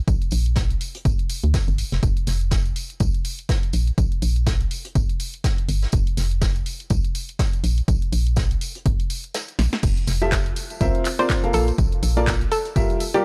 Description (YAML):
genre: piano house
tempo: 123 BPM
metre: 4/4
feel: swing 57% on 16ths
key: unclear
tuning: A4 = 440 Hz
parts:
  - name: organ-like FM bass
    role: bass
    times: 0.1-12.9 s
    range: F1 to D2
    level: -24 LUFS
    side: equal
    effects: sidechain pumping
  - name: electronic kick drum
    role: drums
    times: 0.1-12.9 s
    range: none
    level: -24 LUFS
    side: equal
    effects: none
  - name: house drum kit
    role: drums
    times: 0.1-13.2 s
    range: crash cymbal, handclaps, hi-hat, snare drum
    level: -34 LUFS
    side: equal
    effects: none
  - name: vintage brush drum kit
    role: drums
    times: 0.1-13.1 s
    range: hi-hat, snare drum, tambourine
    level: -36 LUFS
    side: equal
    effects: sidechain pumping on hats, high-pass filter on hats, high-pass filter on snare, sidechain pumping on perc, high-pass filter on perc, high-pass filter on room
  - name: tambourine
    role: percussion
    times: 9.8-13.2 s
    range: none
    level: -43 LUFS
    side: equal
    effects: none
  - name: clear upright piano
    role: riff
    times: 10.2-13.2 s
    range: F3 to F5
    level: -26 LUFS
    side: equal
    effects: sidechain pumping
  - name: hollow square pluck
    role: melody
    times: 11.2-13.2 s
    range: G4 to C5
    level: -28 LUFS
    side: equal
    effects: chorus, analog delay
room: studio reverb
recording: dry, gritty hardware recording, cassette tape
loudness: -22 LUFS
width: mono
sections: 0.0-13.2 A section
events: kick drops out 9.3-9.8; drum fill 9.6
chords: 0.0 N.C.; 0.8 G5; 2.0 N.C.; 8.6 Gm; 9.8 Fmaj9; 10.6 C9sus4; 11.5 Bbmaj7; 12.5 Gm7